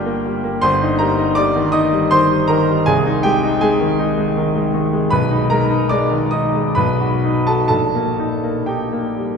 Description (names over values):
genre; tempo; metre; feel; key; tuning
classical, romantic character piece for solo piano; 60-82 BPM; 3/4; rubato; Eb major; A4 = 441 Hz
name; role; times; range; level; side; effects
clear concert grand piano; solo; 0.0-9.4 s; G1 to Eb6; -14 LUFS; equal; none
room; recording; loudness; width
wet cathedral reverb, RT60 5.1 s; recorded in a church or concert hall; -14 LUFS; side -6 dB against mid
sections
0.0-9.4 A section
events
none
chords
0.0 Gm; 0.6 Eb/G; 2.9 Ab/C; 5.1 Abm/Cb; 6.8 B7; 7.7 Eb/Bb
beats
| 0.63 1.37 2.12 | 2.87 3.62 4.36 | 5.12 5.91 6.76 | 7.70 8.69